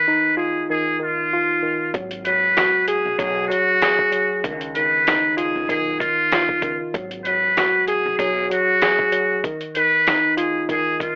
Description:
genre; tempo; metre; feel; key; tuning
hip hop, boom-bap hip-hop; 96 BPM; 4/4; swing 54% on 16ths; G# dorian; A4 = 440 Hz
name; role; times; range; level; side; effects
trumpet with metal mute; melody; 0.0-11.2 s; E#4 to B4; -18 LUFS; equal; none
mellow tine electric piano; accompaniment; 0.0-11.2 s; D#3 to G#4; -23 LUFS; equal; medium stereo tremolo
upright bass; bass; 1.9-8.5 s; G#1 to C#2; -35 LUFS; equal; none
dusty soul sampler-style drum kit; drums; 1.9-11.2 s; hi-hat, kick drum, snare drum; -23 LUFS; equal; none
room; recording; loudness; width
little or no reverb; dry, gritty hardware recording, transformer saturation, vinyl crackle, telephone sound; -17 LUFS; side -36 dB against mid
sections
0.0-1.9 A section; 1.9-11.2 B section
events
break 0.0-1.9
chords
0.0 G#5/D#; 1.9 G#m7; 4.4 C#9; 6.9 G#m7; 9.4 G#m6/D#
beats
0.07 0.69 1.32 | 1.94 2.57 3.19 3.82 | 4.44 5.07 5.69 6.32 | 6.94 7.57 8.19 8.82 | 9.44 10.07 10.69

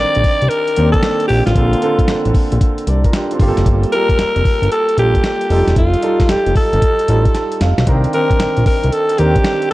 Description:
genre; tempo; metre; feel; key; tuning
R&B, new jack swing; 114 BPM; 4/4; swing 65% on 16ths; C dorian; A4 = 441 Hz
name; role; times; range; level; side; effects
breathy alto saxophone; melody; 0.0-9.7 s; F4 to D5; -16 LUFS; equal; none
warm grand piano; accompaniment; 0.0-9.7 s; D3 to A5; -19 LUFS; right 2 dB; none
fat analog bass; bass; 0.0-9.4 s; E1 to Eb2; -15 LUFS; equal; none
dusty soul sampler-style drum kit; drums; 0.1-9.7 s; hi-hat, kick drum, snare drum; -16 LUFS; equal; none
room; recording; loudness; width
light reverb; dark, warm production; -12 LUFS; side -17 dB against mid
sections
0.0-9.7 A section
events
grand piano fill 7.1-7.9; drum fill 7.3-7.9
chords
0.0 Cm9; 1.6 Bbmaj9; 3.4 Gm9; 5.5 F9; 7.9 Cm9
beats
0.50 1.03 | 1.56 2.08 2.61 3.14 | 3.66 4.19 4.71 5.24 | 5.77 6.29 6.82 7.35 | 7.87 8.40 8.93 9.45

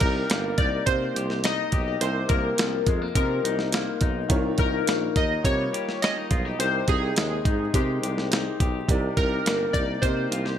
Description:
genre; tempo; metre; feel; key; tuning
indie pop, bedroom pop; 105 BPM; 4/4; straight; C minor; A4 = 440 Hz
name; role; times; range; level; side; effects
warm analog keys; melody; 0.0-10.6 s; G4 to Eb5; -27 LUFS; left 2 dB; lush chorus, ping-pong delay
electric guitar through a small old amp; accompaniment; 0.0-10.6 s; C3 to G4; -31 LUFS; left 5 dB; lush chorus, warbly pitch drift
warm upright piano; accompaniment; 0.0-10.6 s; Eb4 to G5; -35 LUFS; right 6 dB; none
warm tuba; bass; 0.0-10.6 s; G1 to C3; -29 LUFS; equal; none
dusty soul sampler-style drum kit; drums; 0.0-10.5 s; hi-hat, kick drum, snare drum; -25 LUFS; right 1 dB; none
room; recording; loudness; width
light reverb, digital ambience; bright 1980s-style digital production; -22 LUFS; side -9 dB against mid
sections
0.0-10.6 A section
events
none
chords
0.0 Cm7; 2.0 F7sus4/C; 4.3 Eb7; 6.6 Abmaj7/C; 8.9 Cm7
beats
0.30 0.87 1.44 | 2.01 2.59 3.16 3.73 | 4.30 4.88 5.45 6.02 | 6.59 7.16 7.74 8.31 | 8.88 9.45 10.02

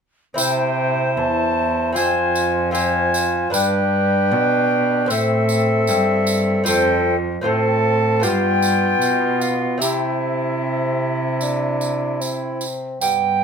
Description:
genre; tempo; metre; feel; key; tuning
classical, renaissance-style consort dance; 76 BPM; 4/4; straight; C major; A4 = 441 Hz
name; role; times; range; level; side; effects
lute; accompaniment; 0.3-13.4 s; E2 to C5; -26 LUFS; left 4 dB; none
concert flute; melody; 0.4-13.4 s; E5 to A5; -23 LUFS; left 4 dB; none
tenor recorder; second line; 0.4-13.4 s; E4 to G5; -22 LUFS; right 6 dB; none
mellow bassoon; accompaniment; 0.4-13.4 s; B3 to F4; -24 LUFS; left 2 dB; none
warm cello; bass; 0.4-13.4 s; E2 to C3; -23 LUFS; right 1 dB; none
tambourine; percussion; 0.4-13.4 s; none; -26 LUFS; right 4 dB; none
room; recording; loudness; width
light reverb; minimal, uncompressed stereo recording; -17 LUFS; side -6 dB against mid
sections
0.4-13.0 A section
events
none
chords
0.4 C; 2.0 Fm; 3.5 G; 5.1 Am; 6.7 F; 8.2 G7; 9.8 C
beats
| 0.37 1.17 1.95 2.74 | 3.52 4.31 5.09 5.88 | 6.66 7.45 8.23 9.02 | 9.81 10.61 11.41 12.21 | 13.01

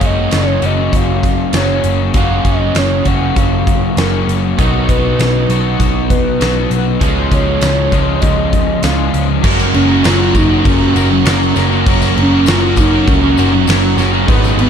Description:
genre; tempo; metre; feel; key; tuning
rock, shoegaze and dream pop; 99 BPM; 4/4; straight; F# major; A4 = 440 Hz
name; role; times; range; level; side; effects
hollow clarinet-like synth lead; melody; 0.0-14.7 s; B3 to F#5; -18 LUFS; equal; chorus, digital delay
crunchy overdriven guitar; riff; 0.0-14.7 s; F#2 to B4; -18 LUFS; left 13 dB; analog chorus
crunchy overdriven guitar; riff; 0.0-14.7 s; F#2 to B4; -18 LUFS; right 15 dB; reverse reverb
vintage muted picked electric bass; bass; 0.0-14.7 s; F#1 to C#2; -16 LUFS; equal; none
huge arena drum kit; drums; 0.0-14.7 s; crash cymbal, hi-hat, kick drum, snare drum; -16 LUFS; equal; none
tambourine; percussion; 9.5-14.6 s; none; -31 LUFS; left 18 dB; none
room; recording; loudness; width
small room ambience; dark, warm production; -10 LUFS; side -8 dB against mid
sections
0.0-9.4 A section; 9.4-14.7 B section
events
none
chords
0.0 F#maj7; 4.6 B; 7.0 C#; 9.4 F#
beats
0.32 0.93 1.54 | 2.15 2.76 3.37 3.98 | 4.59 5.20 5.80 6.41 | 7.02 7.63 8.23 8.84 | 9.45 10.05 10.66 11.26 | 11.86 12.47 13.07 13.68 | 14.28

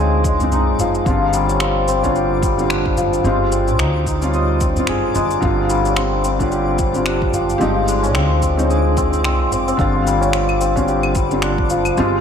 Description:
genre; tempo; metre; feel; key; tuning
organic downtempo; 110 BPM; 4/4; swing 58% on 16ths; unclear; A4 = 440 Hz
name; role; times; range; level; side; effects
felt-muted upright piano; accompaniment; 0.0-12.2 s; D3 to G4; -20 LUFS; right 1 dB; sidechain pumping, ping-pong delay
santur; arpeggios; 0.0-12.2 s; F3 to Eb5; -19 LUFS; left 3 dB; low-pass filter, ping-pong delay
upright bass; bass; 0.0-12.2 s; G1 to D2; -21 LUFS; equal; sidechain pumping
twinkling granular texture; texture; 0.0-12.2 s; D4 to D5; -31 LUFS; equal; built-in reverb, wide subtle chorus
tabla; percussion; 0.1-11.8 s; none; -29 LUFS; right 2 dB; none
electronic kick drum; drums; 0.2-11.7 s; none; -22 LUFS; equal; overdrive
electronic shaker, finger snaps and claves; drums; 0.2-12.1 s; none; -26 LUFS; left 1 dB; overdrive
room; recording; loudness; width
moderate plate reverb, RT60 1.4 s, small room ambience; dreamy mix soaked in reverb; -15 LUFS; side -7 dB against mid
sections
0.0-12.2 A section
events
none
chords
0.0 Fm7; 9.8 G7sus4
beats
0.52 | 1.06 1.61 2.15 2.70 | 3.25 3.79 4.34 4.88 | 5.43 5.97 6.52 7.06 | 7.61 8.15 8.70 9.24 | 9.79 10.34 10.88 11.43 | 11.97

